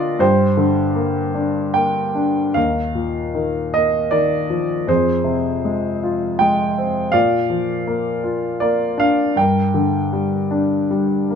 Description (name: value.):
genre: classical, lyrical solo piano.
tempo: 79 BPM.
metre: 3/4.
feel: uneven beats, rubato.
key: unclear.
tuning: A4 = 440 Hz.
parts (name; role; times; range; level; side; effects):
warm grand piano; solo; 0.0-11.4 s; Eb2 to G5; -16 LUFS; equal; none.
room: light reverb.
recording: minimal, uncompressed stereo recording.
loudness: -16 LUFS.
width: side -7 dB against mid.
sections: 0.0-11.4 A section.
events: none.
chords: 0.2 Gm; 2.6 Ebsus2; 4.9 Fmadd9; 7.1 Bb; 9.4 Gm.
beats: | 0.21 0.97 1.76 | 2.57 3.35 4.12 | 4.88 5.65 6.40 | 7.14 7.87 8.62 | 9.37 10.13 10.92.